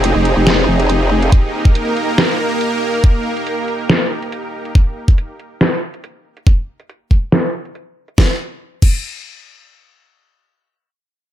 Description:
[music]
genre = heavy wobble dubstep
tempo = 140 BPM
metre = 4/4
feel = swing 54% on 16ths, half-time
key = unclear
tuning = A4 = 440 Hz
[part]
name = supersaw pad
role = sustained chords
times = 0.0-4.7 s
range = Bb3 to Bb4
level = -18 LUFS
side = right 1 dB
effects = sidechain pumping
[part]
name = growl bass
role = bass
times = 0.0-1.3 s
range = F1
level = -14 LUFS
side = equal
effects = chorus, overdrive
[part]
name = dubstep drum kit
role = drums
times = 0.0-9.0 s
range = crash cymbal, hi-hat, snare drum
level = -16 LUFS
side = equal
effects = low-pass filter on hats, low-pass filter on snare, low-pass filter on cymbals, low-pass filter on room
[part]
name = electronic kick drum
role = drums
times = 1.3-9.0 s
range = none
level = -11 LUFS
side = equal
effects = none
[sound]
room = digital ambience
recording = none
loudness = -13 LUFS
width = side -12 dB against mid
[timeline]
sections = 0.0-8.2 A section; 8.2-11.3 B section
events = filter sweep on drum 0.0-8.2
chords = 0.0 Fmadd9; 1.3 Eb; 8.2 N.C.

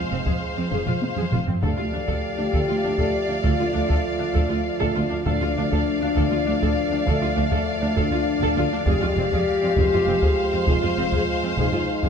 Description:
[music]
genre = cinematic, epic orchestral film score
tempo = 66 BPM (dotted quarters)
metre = 12/8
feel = straight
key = unclear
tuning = A4 = 440 Hz
[part]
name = clear symphonic violin section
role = melody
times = 0.0-12.1 s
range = F5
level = -30 LUFS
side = left 3 dB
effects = none
[part]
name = rich studio violin section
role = second line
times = 0.0-12.1 s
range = C5 to D5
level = -30 LUFS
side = left 2 dB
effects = none
[part]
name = rich symphonic viola section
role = accompaniment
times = 0.0-12.1 s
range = C4 to A4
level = -31 LUFS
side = equal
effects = none
[part]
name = dark French horn section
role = sustained chords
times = 0.0-12.1 s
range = A3 to G4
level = -25 LUFS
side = left 4 dB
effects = none
[part]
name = warm trombone section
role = sustained chords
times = 0.0-12.1 s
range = F3 to A3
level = -31 LUFS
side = right 4 dB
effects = none
[part]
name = rich symphonic cello section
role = bass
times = 0.0-12.1 s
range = D2 to F2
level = -28 LUFS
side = right 3 dB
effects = none
[part]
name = rich symphonic double bass section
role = bass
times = 0.1-11.7 s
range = F1 to D2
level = -29 LUFS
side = right 5 dB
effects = none
[part]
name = taiko ensemble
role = drums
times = 0.3-12.1 s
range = none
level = -26 LUFS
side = equal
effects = none
[sound]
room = moderate scoring stage reverb, RT60 1.7 s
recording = dark, warm production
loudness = -20 LUFS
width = side -7 dB against mid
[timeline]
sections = 0.0-12.1 A section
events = drum fill 0.7-1.6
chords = 0.0 Fm; 1.6 Dm; 8.9 Fm

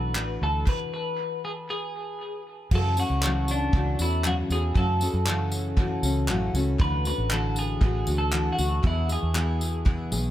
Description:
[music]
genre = acoustic pop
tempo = 118 BPM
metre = 4/4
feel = straight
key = F# minor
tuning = A4 = 435 Hz
[part]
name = twelve-string electric guitar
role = melody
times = 0.0-9.8 s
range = D4 to B4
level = -30 LUFS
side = equal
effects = tape echo
[part]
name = picked steel-string acoustic guitar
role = accompaniment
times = 0.0-10.3 s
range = F#2 to G#4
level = -30 LUFS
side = left 2 dB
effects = tape echo
[part]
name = vintage muted fingered electric bass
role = bass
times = 0.0-10.3 s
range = A1 to F#2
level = -26 LUFS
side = equal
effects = none
[part]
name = unplugged drum kit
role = drums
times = 0.2-10.2 s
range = crash cymbal, handclaps, kick drum, tambourine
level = -28 LUFS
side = equal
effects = tape echo
[sound]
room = little or no reverb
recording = echo-heavy mix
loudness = -23 LUFS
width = side -13 dB against mid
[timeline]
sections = 0.0-2.7 A section; 2.7-10.3 B section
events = stop 0.7-2.7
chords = 0.0 Dadd9; 0.7 N.C.; 2.7 F#m7; 6.8 Dadd9; 8.8 E

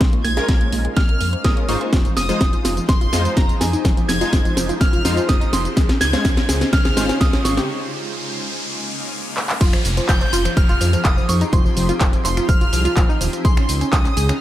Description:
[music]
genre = progressive house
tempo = 125 BPM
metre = 4/4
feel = straight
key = F minor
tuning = A4 = 440 Hz
[part]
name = shimmering ambient pad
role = sustained chords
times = 0.0-14.4 s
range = Db3 to C5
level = -30 LUFS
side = equal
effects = chorus, built-in reverb, sidechain pumping
[part]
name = wide unison pluck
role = arpeggios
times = 0.0-14.4 s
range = F3 to Db5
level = -25 LUFS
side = equal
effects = sidechain pumping, tape echo
[part]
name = dark detuned saw bass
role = bass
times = 0.0-14.3 s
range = Eb1 to F2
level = -23 LUFS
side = equal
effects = tube saturation, sidechain pumping
[part]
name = electronic kick drum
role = drums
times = 0.0-14.0 s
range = none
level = -17 LUFS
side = equal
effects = overdrive
[part]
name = house drum kit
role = drums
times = 0.0-14.4 s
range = crash cymbal, finger snaps, handclaps, hi-hat, snare drum, tambourine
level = -23 LUFS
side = equal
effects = overdrive
[part]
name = glassy synth bell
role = melody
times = 0.2-14.4 s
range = Ab5 to Ab6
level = -27 LUFS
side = right 2 dB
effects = chorus, low-pass filter, tape echo
[part]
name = clear studio violin section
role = second line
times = 0.2-14.4 s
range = Ab5 to Ab6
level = -30 LUFS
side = left 1 dB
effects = sidechain pumping, tape echo
[part]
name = supersaw stab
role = stabs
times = 0.4-7.7 s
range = Ab3 to C5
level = -26 LUFS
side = left 1 dB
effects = analog chorus, sidechain pumping, tape echo
[part]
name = riser and downlifter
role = sound effects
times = 4.0-13.4 s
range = none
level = -31 LUFS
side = equal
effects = none
[sound]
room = light reverb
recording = none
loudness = -16 LUFS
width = side -13 dB against mid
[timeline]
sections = 0.0-9.6 A section; 9.6-14.4 B section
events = build-up 0.0-9.6; drum fill 0.0-7.7, 9.4; filter sweep on synth pluck 0.0-9.6; filter sweep on ambient pad 0.0-9.6; riser 4.0-9.6; break 7.7-9.6; drop 9.6-14.4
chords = 0.0 Bbm7; 1.9 Fm7; 5.8 Dbmaj7; 7.7 Bbm7; 9.6 Fm7; 13.4 Dbmaj7

